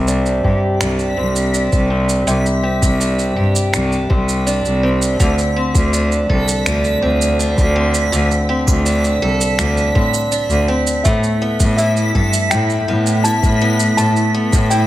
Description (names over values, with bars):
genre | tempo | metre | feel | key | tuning
folktronica | 82 BPM | 4/4 | straight | C major | A4 = 437 Hz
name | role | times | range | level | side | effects
picked acoustic archtop guitar | arpeggios | 0.0-14.9 s | C3 to A4 | -19 LUFS | equal | low-pass filter, tape echo
bright cello | bass | 0.0-14.9 s | C2 to A2 | -17 LUFS | equal | none
backwards swelling texture | texture | 0.0-14.9 s | B6 | -26 LUFS | right 2 dB | built-in reverb
electronic shaker and finger snaps | drums | 0.1-14.9 s | none | -24 LUFS | right 3 dB | none
electronic kick drum | drums | 0.4-14.7 s | none | -16 LUFS | equal | overdrive
felt-muted upright piano | melody | 11.0-14.9 s | E5 to A5 | -21 LUFS | left 1 dB | tape echo
warm analog pad | sustained chords | 11.0-14.9 s | A3 to E4 | -24 LUFS | equal | chorus
room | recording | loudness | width
light reverb, small room ambience | none | -13 LUFS | side -14 dB against mid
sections
0.0-14.9 A section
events
filter sweep on steel-string acoustic guitar 0.0-14.9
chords
0.0 Csus2; 5.2 D5; 11.1 Asus2